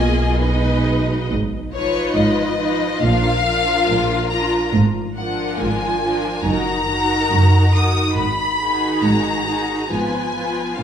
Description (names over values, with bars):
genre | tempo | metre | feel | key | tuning
classical, slow romantic movement for string orchestra | 70 BPM | 4/4 | rubato | unclear | A4 = 440 Hz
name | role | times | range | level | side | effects
warm symphonic violin section | melody | 0.0-10.8 s | Db5 to Eb6 | -21 LUFS | left 4 dB | none
warm symphonic violin section | second line | 0.0-10.8 s | F4 to D#5 | -24 LUFS | left 1 dB | none
rich symphonic viola section | accompaniment | 0.0-10.8 s | Eb3 to E#4 | -24 LUFS | right 2 dB | none
rich symphonic cello section | bass | 0.0-10.8 s | Gb2 to B2 | -23 LUFS | right 2 dB | none
rich symphonic double bass section | bass | 0.0-10.8 s | Gb1 to B1 | -21 LUFS | right 1 dB | none
room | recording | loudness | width
wet recital hall reverb, RT60 1.6 s | minimal, uncompressed stereo recording | -16 LUFS | side -8 dB against mid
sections
0.0-10.8 A section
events
none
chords
0.0 G#m/B; 1.3 Fm7b5/Ab; 3.0 Bb; 4.7 Bb7/Ab; 6.4 Ebm/Gb; 8.2 Abm7; 9.9 Fdim/Ab